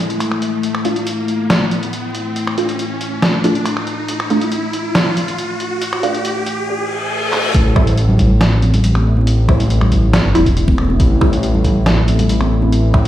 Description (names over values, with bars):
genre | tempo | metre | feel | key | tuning
deep dubstep | 139 BPM | 4/4 | half-time | unclear | A4 = 440 Hz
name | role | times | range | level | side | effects
deep dark ambient pad | sustained chords | 0.0-13.1 s | A3 to E4 | -24 LUFS | left 2 dB | chorus, built-in reverb
riser and reverse cymbal | sound effects | 0.0-7.5 s | none | -22 LUFS | equal | none
trip hop sampler-style drum kit | drums | 0.1-13.1 s | finger snaps, handclaps, hi-hat, snare drum | -19 LUFS | equal | none
filtered dub chord stab | stabs | 0.9-13.1 s | G3 to F4 | -21 LUFS | right 1 dB | phaser, wide subtle chorus, vintage 12-bit sampler grit, dub echo
dark detuned saw bass | bass | 7.5-13.1 s | E1 to A1 | -14 LUFS | equal | none
electronic kick drum | drums | 7.5-13.0 s | none | -14 LUFS | equal | overdrive
congas | percussion | 8.1-12.7 s | none | -21 LUFS | equal | none
room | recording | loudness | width
moderate echo chamber reverb, RT60 1.6 s | played on a big sound system in a bare room, large studio reverb, vinyl crackle | -13 LUFS | side -13 dB against mid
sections
0.0-7.5 A section; 7.5-13.1 B section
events
build-up 0.0-7.5; riser 0.0-7.5; reverse cymbal 6.7-7.5; drum fill 7.3; drop 7.5-13.1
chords
0.0 A5; 0.6 N.C.; 7.5 A5